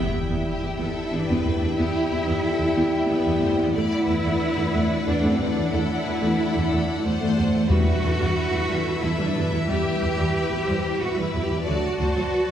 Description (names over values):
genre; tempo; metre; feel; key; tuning
cinematic, epic orchestral film score; 91 BPM; 3/4; straight; E minor; A4 = 439 Hz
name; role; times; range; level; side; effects
rich symphonic violin section; second line; 0.0-12.5 s; B4 to A5; -32 LUFS; left 2 dB; none
warm symphonic viola section; accompaniment; 0.0-12.5 s; F#3 to F#4; -28 LUFS; equal; none
mellow French horn section; sustained chords; 0.0-11.9 s; F#3 to E4; -28 LUFS; left 2 dB; none
rich symphonic cello section; bass; 0.0-12.5 s; A3 to G4; -26 LUFS; right 2 dB; none
impact; sound effects; 0.0-1.8 s; none; -34 LUFS; left 1 dB; none
rich symphonic double bass section; bass; 0.1-12.2 s; D2 to E2; -27 LUFS; right 1 dB; none
bright symphonic violin section; melody; 0.5-12.5 s; G4 to D5; -34 LUFS; left 5 dB; none
timpani; percussion; 7.7-8.6 s; E2; -26 LUFS; equal; none
room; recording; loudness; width
wet scoring stage reverb, RT60 1.5 s; heard from further back in the room; -20 LUFS; side -10 dB against mid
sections
0.0-12.5 A section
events
band accent 0.0-0.5; impact 0.0-1.8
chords
0.0 Em; 3.7 Dadd9/E; 7.7 Em; 11.7 D